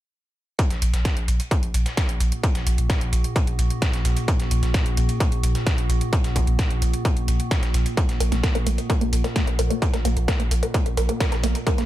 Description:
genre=driving peak-time techno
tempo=130 BPM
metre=4/4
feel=straight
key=unclear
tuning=A4 = 440 Hz
part: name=metallic inharmonic drone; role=drone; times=1.8-11.9 s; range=Bb2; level=-29 LUFS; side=right 1 dB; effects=chorus, built-in reverb, sidechain pumping
part: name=dusty soul sampler-style drum kit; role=drums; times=0.6-11.9 s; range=hi-hat, snare drum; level=-33 LUFS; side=equal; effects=high-pass filter on hats, studio reverb, high-pass filter on snare, high-pass filter on room
part: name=electronic hi-hat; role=drums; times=0.6-11.9 s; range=none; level=-33 LUFS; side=right 2 dB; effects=overdrive, sidechain pumping on hats, studio reverb
part: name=electronic kick drum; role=drums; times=0.6-11.8 s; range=none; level=-22 LUFS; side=equal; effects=distortion, overdrive, studio reverb
part: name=saturated sub bass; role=bass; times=0.7-11.9 s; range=Bb1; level=-23 LUFS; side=equal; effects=tube saturation, sidechain pumping, low-pass filter
part: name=resonant blip pluck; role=riff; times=8.0-11.8 s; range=Bb3 to Bb4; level=-27 LUFS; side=equal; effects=phaser, lush chorus, sidechain pumping, tape echo
part: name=riser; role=sound effects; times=11.7-11.9 s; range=none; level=barely audible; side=none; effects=none
room=little or no reverb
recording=echo-heavy mix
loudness=-20 LUFS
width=side -14 dB against mid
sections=0.6-11.9 A section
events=none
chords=none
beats=| 0.59 1.05 1.51 1.97 | 2.44 2.90 3.36 3.82 | 4.28 4.74 5.21 5.67 | 6.13 6.59 7.05 7.51 | 7.97 8.44 8.90 9.36 | 9.82 10.28 10.74 11.21 | 11.67

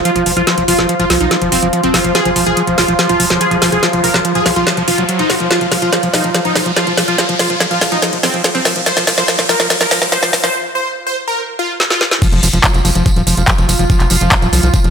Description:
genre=psychedelic trance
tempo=143 BPM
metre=4/4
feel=straight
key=unclear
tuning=A4 = 439 Hz
part: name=bubbling stepped-filter texture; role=sustained chords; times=0.0-14.9 s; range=F3 to F4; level=-20 LUFS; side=right 1 dB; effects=chorus, built-in reverb, sidechain pumping
part: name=tight sequencer bass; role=bass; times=0.0-14.9 s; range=Eb1 to C2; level=-20 LUFS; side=equal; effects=none
part: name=riser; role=sound effects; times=2.1-10.5 s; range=none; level=-23 LUFS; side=equal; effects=none
part: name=ethereal airy pad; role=texture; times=0.0-10.5 s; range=F4 to F5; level=-25 LUFS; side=equal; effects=ensemble chorus, built-in reverb, sidechain pumping
part: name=supersaw stab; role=melody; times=0.1-12.0 s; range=C4 to C5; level=-18 LUFS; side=equal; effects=phaser, sidechain pumping, dub echo
part: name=overdriven acid bass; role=riff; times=0.1-14.9 s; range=F3 to Gb4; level=-18 LUFS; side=equal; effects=distortion, auto-pan, cassette tape, sidechain pumping, dub echo
part: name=garage drum kit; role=drums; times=0.1-14.9 s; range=crash cymbal, handclaps, hi-hat, snare drum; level=-15 LUFS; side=equal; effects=none
part: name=electronic kick drum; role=drums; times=12.2-14.8 s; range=none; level=-13 LUFS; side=equal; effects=none
part: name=tambourine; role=percussion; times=12.2-14.9 s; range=none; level=-22 LUFS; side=right 5 dB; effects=none
room=moderate lush hall reverb, RT60 1.6 s, digital ambience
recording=high-pass filter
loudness=-11 LUFS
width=side -7 dB against mid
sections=0.0-12.2 A section; 12.2-14.9 B section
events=build-up 0.0-12.2; drum fill 0.0-10.5, 11.8-12.2; filter sweep on acid bass 0.0-12.2; filter sweep 0.0-12.2; riser 2.1-10.5; break 10.5-12.2; drop 12.2-14.9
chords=0.0 F5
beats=0.05 | 0.47 0.89 1.31 1.73 | 2.15 2.57 2.99 3.41 | 3.83 4.25 4.67 5.09 | 5.51 5.93 6.35 6.76 | 7.18 7.61 8.02 8.44 | 8.86 9.28 9.70 10.12 | 10.54 10.96 11.38 11.80 | 12.22 12.64 13.06 13.48 | 13.90 14.32 14.74

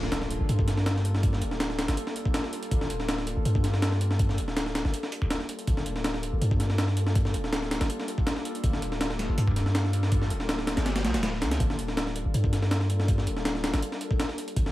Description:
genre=drum and bass, jungle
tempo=162 BPM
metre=4/4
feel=straight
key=G minor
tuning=A4 = 440 Hz
part: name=long sustained 808-style bass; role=bass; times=0.0-14.7 s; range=D1 to G2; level=-27 LUFS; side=equal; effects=none
part: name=breakbeat sampler-style drum kit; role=drums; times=0.0-14.7 s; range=hi-hat, kick drum, snare drum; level=-28 LUFS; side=equal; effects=small room ambience
part: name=impact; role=sound effects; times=0.0-1.2 s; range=none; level=-40 LUFS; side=equal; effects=none
room=digital ambience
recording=vinyl crackle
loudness=-25 LUFS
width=side -16 dB against mid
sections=0.0-14.7 A section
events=impact 0.0-1.2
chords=none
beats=0.12 0.49 0.86 | 1.23 1.60 1.97 2.34 | 2.71 3.08 3.45 3.82 | 4.20 4.57 4.93 5.31 | 5.68 6.05 6.42 6.79 | 7.16 7.53 7.90 8.27 | 8.64 9.01 9.38 9.75 | 10.12 10.49 10.86 11.23 | 11.60 11.97 12.34 12.71 | 13.08 13.45 13.82 14.20 | 14.56

